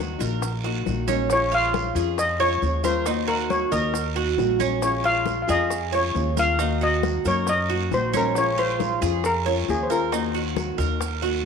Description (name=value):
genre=latin, Cuban son and guajira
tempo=136 BPM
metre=4/4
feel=straight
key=Bb minor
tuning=A4 = 436 Hz
part: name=steel pan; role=melody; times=0.0-11.4 s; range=Ab4 to F5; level=-24 LUFS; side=left 2 dB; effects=none
part: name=nylon-string guitar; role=accompaniment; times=0.0-11.4 s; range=Eb3 to Gb4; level=-29 LUFS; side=left 14 dB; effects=none
part: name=Cuban tres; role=arpeggios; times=0.0-11.4 s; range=Db4 to Db5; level=-27 LUFS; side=right 12 dB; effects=none
part: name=upright bass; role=bass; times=0.0-11.4 s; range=Bb1 to Gb2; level=-28 LUFS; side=equal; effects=none
part: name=bongos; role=percussion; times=0.2-11.4 s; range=none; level=-36 LUFS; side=left 14 dB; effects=none
part: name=congas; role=percussion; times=0.2-11.4 s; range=none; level=-33 LUFS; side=left 15 dB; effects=none
part: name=guiro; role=percussion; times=0.2-11.4 s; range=none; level=-38 LUFS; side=right 15 dB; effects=none
part: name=maracas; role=percussion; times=0.2-11.4 s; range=none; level=-39 LUFS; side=right 17 dB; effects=none
room=light reverb, studio reverb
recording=1960s-style stereo with parts hard left and right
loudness=-20 LUFS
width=side -6 dB against mid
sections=0.0-11.4 A section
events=none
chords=0.0 Ebm; 1.3 Bbm7; 3.1 Ebm; 4.8 Bbm7; 6.6 Ebm; 8.4 Bbm7; 10.1 Ebm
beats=0.43 0.87 | 1.31 1.75 2.19 2.63 | 3.07 3.51 3.95 4.39 | 4.83 5.27 5.71 6.15 | 6.59 7.03 7.47 7.91 | 8.36 8.80 9.24 9.68 | 10.12 10.57 11.01